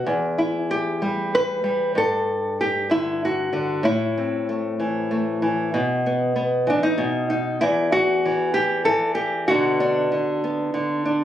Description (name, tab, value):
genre	folk, solo fingerstyle acoustic guitar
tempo	96 BPM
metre	3/4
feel	straight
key	unclear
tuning	A4 = 445 Hz
part	nylon-string guitar	solo	0.0-11.2 s	E2 to B4	-20 LUFS	equal	none
room	light reverb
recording	recorded on a phone in the room, club reverb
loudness	-20 LUFS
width	side -11 dB against mid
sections	0.0-7.6 A section; 7.6-11.2 B section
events	none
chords	0.1 Em; 2.0 Gsus2; 3.9 Am; 5.7 Bsus4; 7.0 B; 7.6 N.C.; 9.5 Bm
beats	| 0.08 0.72 1.35 | 1.98 2.60 3.23 | 3.86 4.49 5.12 | 5.74 6.37 7.00 | 7.63 8.26 8.88 | 9.51 10.13 10.75